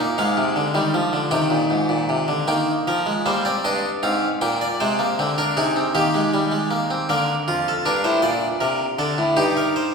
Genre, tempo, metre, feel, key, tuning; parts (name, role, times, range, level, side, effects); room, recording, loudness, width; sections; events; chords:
classical, baroque-style 3-part fugue for harpsichord; 52 BPM (dotted quarters); 6/8; straight; Eb major; A4 = 441 Hz
harpsichord; solo; 0.0-9.9 s; F2 to G5; -18 LUFS; equal
wet recital hall reverb, RT60 1.7 s; recorded in a church or concert hall; -18 LUFS; side -5 dB against mid
0.0-2.5 A section; 2.5-9.9 B section
0.2 Fm/Ab; 1.3 Cm; 2.5 Eb; 3.6 Eb/G; 4.8 Ab/C; 5.9 Eb; 7.1 Bb; 9.4 Eb/G